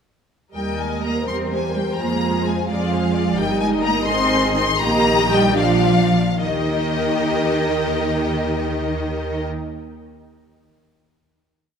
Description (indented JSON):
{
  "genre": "quick classical-period movement for string orchestra",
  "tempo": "71-88 BPM (dotted quarters)",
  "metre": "6/8",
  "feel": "rubato",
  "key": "Eb major",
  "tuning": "A4 = 444 Hz",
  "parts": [
    { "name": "warm symphonic violin section", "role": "melody", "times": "0.5-9.4 s", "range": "Eb5 to C6", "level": "-23 LUFS", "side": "left 5 dB", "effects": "none" },
    { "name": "rich studio double bass section", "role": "bass", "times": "0.5-9.4 s", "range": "G1 to F2", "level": "-26 LUFS", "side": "right 3 dB", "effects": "none" },
    { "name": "warm symphonic violin section", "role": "second line", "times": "0.6-9.4 s", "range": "F4 to Eb5", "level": "-26 LUFS", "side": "left 3 dB", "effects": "none" },
    { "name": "rich symphonic viola section", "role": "accompaniment", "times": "0.6-9.4 s", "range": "Eb3 to Bb4", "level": "-23 LUFS", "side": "right 2 dB", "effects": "none" },
    { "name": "dark symphonic cello section", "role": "bass", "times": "0.6-9.4 s", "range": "Eb3 to C4", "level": "-24 LUFS", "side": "right 1 dB", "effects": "none" }
  ],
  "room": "wet concert hall reverb, RT60 2.3 s",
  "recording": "none",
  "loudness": "-17 LUFS",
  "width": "side -7 dB against mid",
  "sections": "0.5-6.4 A section; 6.4-9.6 final chord",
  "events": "slowing down 2.7-6.4",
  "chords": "0.5 Eb; 1.3 C7/E; 2.0 Fm; 2.7 Fm6; 3.4 Eb/G; 4.1 Ab; 4.8 Eb/Bb; 5.6 Bb; 6.4 Eb"
}